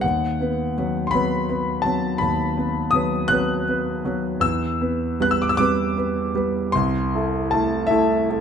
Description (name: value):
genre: classical, romantic nocturne for solo piano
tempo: 51-56 BPM (dotted quarters)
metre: 12/8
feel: rubato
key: unclear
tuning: A4 = 440 Hz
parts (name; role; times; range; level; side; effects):
- warm concert grand piano; solo; 0.0-8.4 s; C2 to F#6; -19 LUFS; equal; none
room: moderate large studio reverb, RT60 1.2 s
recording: none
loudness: -19 LUFS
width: side -7 dB against mid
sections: 0.0-8.4 A section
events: none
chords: 0.0 B/D#; 4.4 Em; 6.7 Am/C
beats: | 0.03 1.12 2.20 3.30 | 4.42 5.59 6.74 7.90